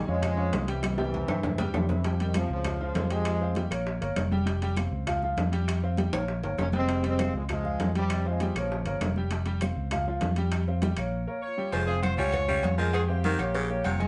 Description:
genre	latin, salsa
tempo	198 BPM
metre	4/4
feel	straight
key	F minor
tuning	A4 = 440 Hz
part	bright trombone section	melody	0.0-3.7, 6.6-9.1 s	C3 to Db4	-34 LUFS	equal	none
part	clear baby grand piano	accompaniment	0.0-14.1 s	F3 to Ab5	-35 LUFS	equal	none
part	fingered electric bass	bass	0.0-14.1 s	F1 to G2	-31 LUFS	equal	none
part	bongos and cowbell	percussion	0.2-14.1 s	none	-39 LUFS	equal	none
part	claves	percussion	0.2-14.0 s	none	-45 LUFS	equal	none
part	congas	percussion	0.2-14.1 s	none	-37 LUFS	equal	none
part	timbales and agogo bells	percussion	0.2-14.0 s	none	-40 LUFS	equal	none
part	warm horn section	melody	11.4-14.1 s	Bb3 to Db5	-34 LUFS	equal	none
part	raspy baritone saxophone	second line	11.7-14.0 s	C3 to G3	-34 LUFS	equal	none
room	wet studio reverb, RT60 0.6 s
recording	band playing live in one room, nothing above 10.8 kHz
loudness	-28 LUFS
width	mono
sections	0.0-2.0 A section; 2.0-11.7 B section; 11.7-14.1 C section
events	drum fill 0.8-2.0, 6.1-6.9; break 11.1-11.7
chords	0.0 Bbm7 (rootless); 0.8 C; 2.0 Fsus2; 2.7 Db; 3.3 Fmadd9; 3.9 Bbm; 4.5 Fsus2; 5.1 Db; 5.7 Fsus2; 6.3 Bbm; 6.9 Fmadd9; 7.5 Db; 8.1 Fmadd9; 8.7 Bbm; 9.3 Fsus2; 9.9 Db; 10.5 Fsus2; 11.1 Bbm; 11.7 Fmadd9; 12.3 Db; 12.9 Fmadd9; 13.5 Bbm

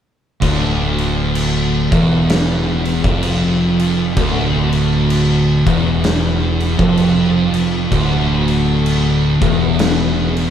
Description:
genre	stoner and doom metal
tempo	64 BPM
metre	4/4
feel	swing 60% on 8ths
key	D minor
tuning	A4 = 440 Hz
part	overdriven semi-hollow guitar	riff	0.4-10.5 s	D2 to F2	-22 LUFS	right 1 dB	none
part	thick fuzz guitar	riff	0.4-10.5 s	D2 to F2	-19 LUFS	left 6 dB	distortion
part	thick fuzz guitar	riff	0.4-10.5 s	D2 to F2	-18 LUFS	right 7 dB	distortion
part	growling fingered electric bass	bass	0.4-10.5 s	D1 to F1	-21 LUFS	left 1 dB	overdrive
part	oversized low-tuned drum kit	drums	0.4-10.5 s	crash cymbal, kick drum, snare drum	-20 LUFS	equal	none
room	moderate large studio reverb, RT60 1.1 s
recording	band playing live in one room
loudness	-13 LUFS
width	side -9 dB against mid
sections	0.4-10.5 A section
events	none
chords	0.4 Dm

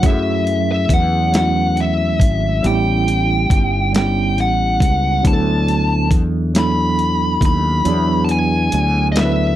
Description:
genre	slow six-eight R&B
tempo	46 BPM (dotted quarters)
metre	6/8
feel	straight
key	F# minor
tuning	A4 = 439 Hz
part	bluesy overdriven lead guitar	melody	0.0-9.6 s	D#5 to B5	-19 LUFS	left 1 dB	distortion, slapback echo
part	tine electric piano	accompaniment	0.0-9.6 s	F#3 to B4	-20 LUFS	right 2 dB	medium stereo tremolo
part	fretless electric bass	bass	0.0-9.6 s	G1 to F#2	-19 LUFS	equal	analog chorus
part	dusty soul sampler-style drum kit	drums	0.0-9.4 s	hi-hat, kick drum, snare drum	-17 LUFS	equal	none
room	little or no reverb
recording	dry, close 1970s-style studio recording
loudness	-14 LUFS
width	side -13 dB against mid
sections	0.0-9.6 A section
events	none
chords	0.0 F#m7; 2.6 A13; 5.2 D69; 7.9 E9

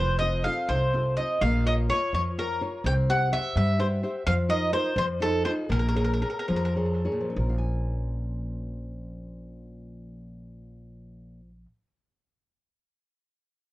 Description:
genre	italian folk, Italian serenade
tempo	66-86 BPM (dotted quarters)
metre	6/8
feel	rubato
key	Bb minor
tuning	A4 = 441 Hz
part	mandolin	melody	0.0-6.7 s	A4 to G5	-27 LUFS	equal	tape echo
part	nylon-string guitar	accompaniment	0.0-11.9 s	Bb2 to Ab5	-30 LUFS	left 2 dB	none
part	upright bass	bass	0.0-11.6 s	F1 to G2	-28 LUFS	equal	none
room	moderate studio ambience, RT60 0.5 s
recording	worn, warbling old tape, cassette tape, warbly pitch drift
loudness	-24 LUFS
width	side -17 dB against mid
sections	0.0-7.4 A section; 7.4-10.9 B section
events	slowing down 4.3-7.4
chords	0.0 F; 1.4 Bbm; 2.9 C; 4.3 F7sus4; 5.0 F7; 5.7 Bbm7

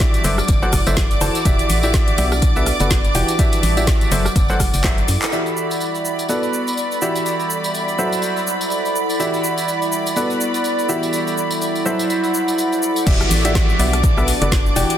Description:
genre	piano house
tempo	124 BPM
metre	4/4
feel	swing 57% on 16ths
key	E minor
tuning	A4 = 440 Hz
part	dark studio violin section	sustained chords	0.0-15.0 s	D5 to D6	-23 LUFS	right 1 dB	sidechain pumping
part	clear upright piano	riff	0.0-14.9 s	E3 to A5	-22 LUFS	equal	sidechain pumping, low-pass filter, dub echo
part	organ-like FM bass	bass	0.0-5.2, 13.1-14.8 s	E1 to F#2	-21 LUFS	equal	sidechain pumping
part	electronic kick drum	drums	0.0-5.0, 13.1-14.6 s	none	-18 LUFS	equal	none
part	garage drum kit	drums	0.0-15.0 s	crash cymbal, handclaps, hi-hat, rim click, shaker, snare drum	-24 LUFS	left 1 dB	soft clipping on snare
part	tambourine	percussion	0.0-13.0 s	none	-31 LUFS	equal	none
part	warbly tape-like pad	texture	0.0-15.0 s	G3 to F#5	-25 LUFS	equal	chorus, built-in reverb, sidechain pumping
part	downlifter	sound effects	13.1-15.0 s	none	-26 LUFS	equal	none
room	moderate digital room reverb, RT60 1.1 s, digital ambience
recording	dense, heavily limited modern master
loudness	-16 LUFS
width	side -10 dB against mid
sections	0.0-5.3 A section; 5.3-13.1 B section; 13.1-15.0 C section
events	drum fill 4.8-5.3; band accent 5.2; filter sweep on upright piano 5.3-13.1; drop 13.1-15.0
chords	0.2 F#m7b5; 1.5 Em9; 2.4 Bm7; 3.1 Em9; 4.1 F#m7b5; 5.3 Em9; 6.3 Bm7; 7.0 Em9; 8.0 F#m7b5; 9.2 Em9; 10.2 Bm7; 10.9 Em9; 11.9 F#m7b5; 13.1 Em9; 14.0 Bm7

